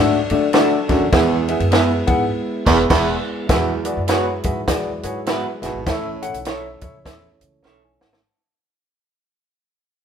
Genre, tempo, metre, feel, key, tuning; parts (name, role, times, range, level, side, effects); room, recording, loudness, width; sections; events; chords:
uptempo 1960s-style soul; 101 BPM; 4/4; swing 60% on 8ths; E mixolydian; A4 = 440 Hz
warm upright piano; accompaniment; 0.0-8.4 s; A3 to C#6; -20 LUFS; left 2 dB; tube saturation
mellow tonewheel organ; sustained chords; 0.0-8.2 s; E3 to E4; -28 LUFS; right 1 dB; slow rotary speaker
upright bass; bass; 0.0-8.2 s; E1 to A2; -26 LUFS; equal
compact cocktail drum kit; drums; 0.3-8.2 s; crash cymbal, hi-hat, kick drum, ride cymbal, snare drum; -21 LUFS; right 1 dB
electric guitar through a small old amp; stabs; 0.5-7.8 s; G#3 to C#5; -25 LUFS; right 3 dB
warm baritone saxophone; riff; 0.9-6.3 s; E2 to B2; -22 LUFS; right 4 dB
moderate stone room reverb, RT60 1.1 s; band playing live in one room; -16 LUFS; side -8 dB against mid
0.0-3.5 A section; 3.5-8.2 B section
band accent 2.3-3.5; fade-out 3.5-8.2; drum fill 7.6-8.2
0.0 D; 1.1 E; 3.5 Eadd9; 5.9 A